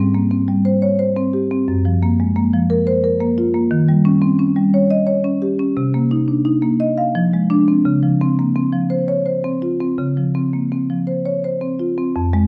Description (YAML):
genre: classical, contemporary piece for solo marimba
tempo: 87 BPM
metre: 3/4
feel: rubato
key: unclear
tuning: A4 = 440 Hz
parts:
  - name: marimba with medium mallets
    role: solo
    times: 0.0-12.5 s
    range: F2 to F5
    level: -17 LUFS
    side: equal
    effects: none
room: moderate recital hall reverb, RT60 1.3 s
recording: dark, warm production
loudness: -17 LUFS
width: mono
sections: 0.0-12.2 A section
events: none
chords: 0.0 Abmaj7; 1.7 Gbmaj7; 3.7 Eb7; 5.8 Cm9; 7.2 Fm6; 7.9 Dbmaj7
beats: 0.32 1.00 | 1.68 2.37 3.05 | 3.72 4.40 5.09 | 5.78 6.46 7.16 | 7.86 8.55 9.26 | 9.98 10.71 11.44 | 12.15